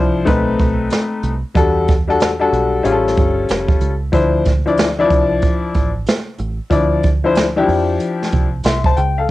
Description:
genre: hip hop, jazz-hop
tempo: 93 BPM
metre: 4/4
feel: swing 66% on 16ths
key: D minor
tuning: A4 = 435 Hz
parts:
  - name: clear upright piano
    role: accompaniment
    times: 0.0-9.3 s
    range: E3 to C6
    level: -16 LUFS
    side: left 3 dB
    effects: cassette tape
  - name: deep dub fingered electric bass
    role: bass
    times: 0.0-9.3 s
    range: F1 to F2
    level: -21 LUFS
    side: right 2 dB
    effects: none
  - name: jazz brush drum kit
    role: drums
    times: 0.3-9.2 s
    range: hi-hat, kick drum, snare drum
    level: -17 LUFS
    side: right 2 dB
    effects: vintage 12-bit sampler grit, cassette tape
room: light reverb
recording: home recording on cassette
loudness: -14 LUFS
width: side -16 dB against mid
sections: 0.0-9.3 A section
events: none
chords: 0.3 B7b9; 1.6 Em11; 2.8 A7b13; 4.1 Dm9

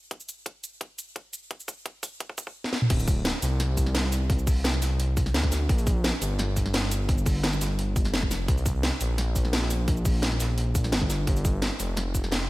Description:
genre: liquid drum and bass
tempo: 172 BPM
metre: 4/4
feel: straight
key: unclear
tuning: A4 = 440 Hz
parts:
  - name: electronic kick drum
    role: drums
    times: 0.1-12.2 s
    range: none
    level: -26 LUFS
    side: equal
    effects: high-pass filter on kick
  - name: garage drum kit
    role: drums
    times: 0.1-12.4 s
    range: cabasa, crash cymbal, hi-hat, snare drum, toms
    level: -30 LUFS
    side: equal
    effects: none
  - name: dark detuned saw bass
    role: bass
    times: 2.9-12.5 s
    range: D1 to D2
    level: -26 LUFS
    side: equal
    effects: none
  - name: crunchy breakbeat drum kit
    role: drums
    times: 2.9-12.5 s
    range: hi-hat, snare drum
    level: -36 LUFS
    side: equal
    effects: high-pass filter on hats, high-pass filter on snare, high-pass filter on room
room: light reverb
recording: none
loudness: -23 LUFS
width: side -19 dB against mid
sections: 0.0-2.9 A section; 2.9-12.5 B section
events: build-up 0.0-2.9; drum fill 0.1-2.6, 2.6; drop 2.9-12.5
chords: none

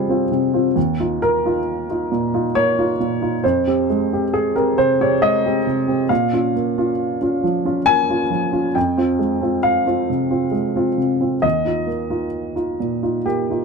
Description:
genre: neoclassical minimalist piano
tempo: 67 BPM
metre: 3/4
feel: rubato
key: F minor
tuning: A4 = 445 Hz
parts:
  - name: warm upright piano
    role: solo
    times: 0.0-13.6 s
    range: Eb2 to Ab5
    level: -17 LUFS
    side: equal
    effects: none
room: light reverb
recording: none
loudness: -17 LUFS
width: side -4 dB against mid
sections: 0.0-13.6 A section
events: none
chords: 0.0 Fmadd9; 0.8 Ebsus2; 3.4 Fmadd9; 6.1 Bbm; 8.8 Fmadd9; 11.4 Ebsus2

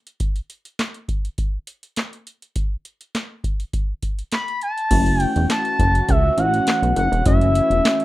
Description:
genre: early-eighties boogie funk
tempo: 102 BPM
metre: 4/4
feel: straight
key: unclear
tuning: A4 = 439 Hz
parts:
  - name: booming analog drum machine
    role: drums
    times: 0.1-8.0 s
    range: crash cymbal, handclaps, hi-hat, kick drum, snare drum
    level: -22 LUFS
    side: equal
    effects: none
  - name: expressive portamento lead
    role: melody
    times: 4.3-8.0 s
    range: E5 to B5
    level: -20 LUFS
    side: equal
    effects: chorus, slapback echo, plate reverb
  - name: tine electric piano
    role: accompaniment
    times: 4.9-8.0 s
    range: A3 to F#4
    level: -24 LUFS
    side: left 1 dB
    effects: medium stereo tremolo
  - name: warm analog pad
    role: sustained chords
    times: 4.9-8.0 s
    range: E3 to F#4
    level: -29 LUFS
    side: right 1 dB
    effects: chorus
  - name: chorused synth bass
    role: bass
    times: 4.9-7.8 s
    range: E1 to C#2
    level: -19 LUFS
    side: equal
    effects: none
room: moderate studio reverb, RT60 0.5 s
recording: rough home demo mix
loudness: -18 LUFS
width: side -17 dB against mid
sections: 0.0-4.9 A section; 4.9-8.0 B section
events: none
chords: 0.0 N.C.; 4.9 F#m7

